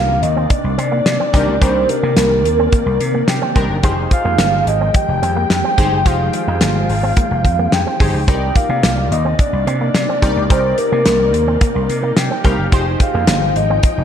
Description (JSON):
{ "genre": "early-eighties boogie funk", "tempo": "108 BPM", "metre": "4/4", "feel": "straight", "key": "C minor", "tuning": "A4 = 440 Hz", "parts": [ { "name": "soft octave-layered synth lead", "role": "melody", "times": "0.0-14.0 s", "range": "Bb4 to G5", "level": "-18 LUFS", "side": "equal", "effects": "chorus, phaser, analog delay" }, { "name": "funky polysynth comp", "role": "accompaniment", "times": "0.0-13.6 s", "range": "D4 to F5", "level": "-23 LUFS", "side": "left 2 dB", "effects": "chorus" }, { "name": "soft string machine", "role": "sustained chords", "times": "0.0-14.0 s", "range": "C3 to G5", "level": "-25 LUFS", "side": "equal", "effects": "ensemble chorus" }, { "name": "electric guitar with an envelope filter", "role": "riff", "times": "0.0-13.9 s", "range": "Bb3 to F4", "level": "-25 LUFS", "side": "right 4 dB", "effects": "wide subtle chorus" }, { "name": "vintage slap bass", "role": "bass", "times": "0.0-14.0 s", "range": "F1 to C3", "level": "-19 LUFS", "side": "equal", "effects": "none" }, { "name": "damped 70s drum kit", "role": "drums", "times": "0.2-14.0 s", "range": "hi-hat, kick drum, snare drum", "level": "-16 LUFS", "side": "equal", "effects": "none" } ], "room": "moderate lush hall reverb, RT60 1.6 s, small room reverb", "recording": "dreamy mix soaked in reverb", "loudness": "-13 LUFS", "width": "side -8 dB against mid", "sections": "0.0-14.0 A section", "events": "none", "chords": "0.0 Cm9; 3.8 Fm9; 8.3 Cm9; 12.7 Fm9" }